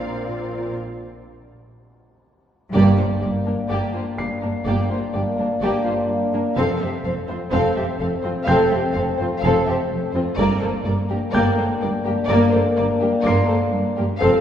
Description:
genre	cinematic, suspense film score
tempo	63 BPM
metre	4/4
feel	straight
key	unclear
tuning	A4 = 440 Hz
part	muted studio violin section	melody	0.0-14.4 s	Bb4 to F5	-31 LUFS	left 3 dB	none
part	muted studio violin section	second line	0.0-14.4 s	D4 to D5	-25 LUFS	left 1 dB	none
part	muted studio viola section	accompaniment	0.0-14.4 s	Bb3 to F4	-26 LUFS	equal	none
part	muted studio cello section	riff	0.0-14.4 s	F2 to G3	-27 LUFS	right 2 dB	none
part	muted studio cello section	bass	0.0-14.3 s	F2 to Bb2	-27 LUFS	right 2 dB	none
part	muted studio double bass section	bass	0.0-14.3 s	F1 to Bb1	-27 LUFS	right 2 dB	none
part	clear grand piano	texture	0.0-14.4 s	G5 to C7	-31 LUFS	left 1 dB	none
part	mellow French horn section	sustained chords	2.7-14.4 s	A3 to D4	-24 LUFS	left 2 dB	none
room	wet scoring stage reverb, RT60 2.1 s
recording	heard from further back in the room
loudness	-18 LUFS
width	side -9 dB against mid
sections	0.0-2.7 A section; 2.7-14.4 B section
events	break 0.8-2.7; band accent 2.7-3.7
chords	0.0 Bbadd9; 2.7 Gm; 6.6 F; 10.4 Gm

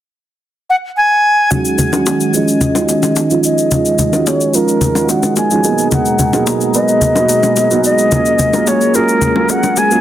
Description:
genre	amapiano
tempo	109 BPM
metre	4/4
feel	straight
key	Eb minor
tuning	A4 = 442 Hz
part	bright reedy concert flute	melody	0.7-10.0 s	Bb4 to Ab5	-15 LUFS	left 1 dB	low-pass filter, tape echo
part	warm grand piano	accompaniment	1.5-10.0 s	F3 to Cb5	-16 LUFS	right 4 dB	low-pass filter
part	warm analog pad	sustained chords	1.5-10.0 s	Cb3 to Bb5	-18 LUFS	left 1 dB	chorus, low-pass filter
part	shaker	drums	1.5-10.0 s	none	-20 LUFS	left 3 dB	none
part	congas and bongos	percussion	1.5-9.9 s	none	-18 LUFS	left 2 dB	none
room	light reverb, small room reverb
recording	dense, heavily limited modern master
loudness	-10 LUFS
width	side -12 dB against mid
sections	0.0-1.5 A section; 1.5-10.0 B section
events	filter sweep 1.5-10.0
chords	0.0 N.C.; 1.5 Ebm11; 5.6 Abm9; 8.1 Gbmaj9

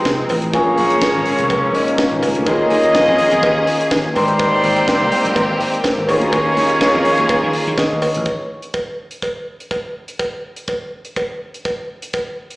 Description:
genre	disco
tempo	124 BPM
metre	4/4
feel	straight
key	unclear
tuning	A4 = 440 Hz
part	overdriven tine electric piano	accompaniment	0.0-8.5 s	Bb2 to Eb5	-20 LUFS	left 1 dB	phaser, slapback echo
part	clear studio string section	sustained chords	0.0-8.2 s	Eb3 to G5	-21 LUFS	equal	none
part	warm horn section	stabs	0.0-8.0 s	G3 to Eb5	-17 LUFS	equal	slapback echo
part	vintage slap bass	bass	0.1-8.2 s	F1 to Eb3	-23 LUFS	equal	none
part	tight funk drum kit	drums	0.1-12.6 s	hi-hat, kick drum, snare drum	-25 LUFS	equal	none
part	cowbell	percussion	0.1-12.3 s	none	-23 LUFS	right 1 dB	slapback echo
room	light reverb, small room ambience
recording	live gig heard through the venue's PA, recital hall reverb, small speaker sound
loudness	-14 LUFS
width	side -22 dB against mid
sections	0.0-8.3 A section; 8.3-12.6 B section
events	none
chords	0.0 Fm9; 0.5 Bbm7; 2.5 Eb9sus4; 4.2 Abmaj9; 6.1 Eb7sus4; 8.3 N.C.

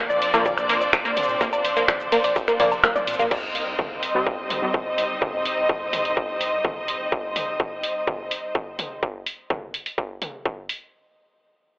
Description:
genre	melodic techno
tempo	126 BPM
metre	4/4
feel	straight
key	C minor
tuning	A4 = 439 Hz
part	warm symphonic string section	sustained chords	0.0-9.0 s	F3 to Eb5	-25 LUFS	equal	sidechain pumping
part	wide unison pluck	arpeggios	0.0-3.2 s	Bb3 to D5	-23 LUFS	equal	vintage 12-bit sampler grit, sidechain pumping, tape echo
part	synth brass stab	stabs	0.0-5.5 s	Bb2 to C4	-28 LUFS	equal	chorus, sidechain pumping, tape echo
part	round analog bass	bass	0.1-7.1 s	G1 to Bb2	-44 LUFS	equal	tube saturation, sidechain pumping
part	techno drum kit	drums	0.1-10.8 s	crash cymbal, finger snaps, hi-hat, ride cymbal, shaker, toms, woodblock	-25 LUFS	equal	none
part	electronic kick drum	drums	0.5-10.6 s	none	-26 LUFS	equal	distortion
part	sub drop	sound effects	3.4-5.2 s	none	-58 LUFS	equal	none
room	light reverb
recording	dry, gritty hardware recording, cassette tape, telephone sound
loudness	-21 LUFS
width	side -22 dB against mid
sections	0.0-3.3 A section; 3.3-10.9 B section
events	drop 0.0-3.3; drum fill 2.8-3.3; band accent 2.8; impact 3.3-5.2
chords	0.0 Bbadd9; 3.3 Cm

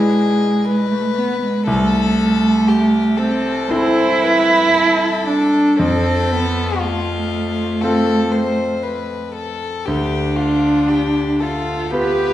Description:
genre	classical, slow romantic movement for piano trio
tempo	58 BPM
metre	4/4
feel	rubato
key	A minor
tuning	A4 = 440 Hz
part	rich violin	melody	0.0-12.3 s	F4 to C5	-22 LUFS	left 5 dB	none
part	dark cello	second line	0.0-12.3 s	G#3 to G4	-16 LUFS	right 1 dB	none
part	clear concert grand piano	accompaniment	0.0-12.3 s	B1 to B4	-21 LUFS	equal	none
room	wet recital hall reverb, RT60 1.3 s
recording	heard from further back in the room, nothing above 10.7 kHz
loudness	-14 LUFS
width	side -13 dB against mid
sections	0.0-12.3 A section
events	none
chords	0.0 E7/B; 1.7 Am/C; 5.8 F; 9.9 Bdim/D

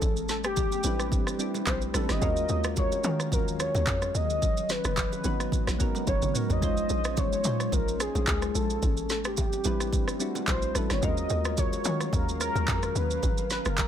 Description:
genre	amapiano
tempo	109 BPM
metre	4/4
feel	swing 55% on 16ths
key	unclear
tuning	A4 = 440 Hz
part	warm velvety synth lead	melody	0.0-13.9 s	G4 to Eb5	-31 LUFS	equal	chorus, ping-pong delay
part	soft electric-piano-like synth keys	accompaniment	0.0-13.2 s	G3 to Db5	-34 LUFS	left 2 dB	chorus
part	ethereal airy pad	sustained chords	0.0-13.9 s	Eb3 to F5	-36 LUFS	left 1 dB	ensemble chorus, built-in reverb, phaser
part	hollow log drum bass	bass	0.0-13.9 s	Gb1 to Eb3	-31 LUFS	equal	none
part	afro-pop drum kit	drums	0.0-13.9 s	handclaps, kick drum, rim click, shaker, snare drum, toms	-29 LUFS	equal	none
part	congas and bongos	percussion	0.0-13.9 s	none	-39 LUFS	right 2 dB	none
room	little or no reverb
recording	none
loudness	-25 LUFS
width	side -9 dB against mid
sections	0.0-13.9 A section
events	drum fill 6.1-6.6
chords	0.0 Am11; 2.2 Ebm11; 4.4 Abm11; 6.6 Bbm11; 8.8 Am11; 11.0 Ebm11; 13.2 Abm9

